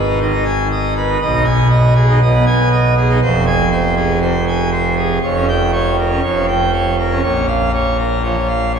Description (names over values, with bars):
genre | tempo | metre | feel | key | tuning
classical, organ toccata | 119 BPM | 4/4 | straight | F minor from 3.2 s | A4 = 436 Hz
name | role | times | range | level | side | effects
pipe organ, full organ | solo | 0.0-8.8 s | F1 to G#5 | -13 LUFS | right 1 dB | none
room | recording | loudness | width
wet church reverb, RT60 3.2 s | heard from further back in the room, lossy compression artefacts | -13 LUFS | side -6 dB against mid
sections
0.0-8.8 A section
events
none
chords
0.0 G#m; 1.2 G#m/B; 3.2 Fm; 5.2 Gm7b5/F; 7.2 Bbm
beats
0.21 0.71 | 1.21 1.72 2.22 2.72 | 3.22 3.73 4.23 4.73 | 5.23 5.73 6.24 6.74 | 7.24 7.75 8.25 8.77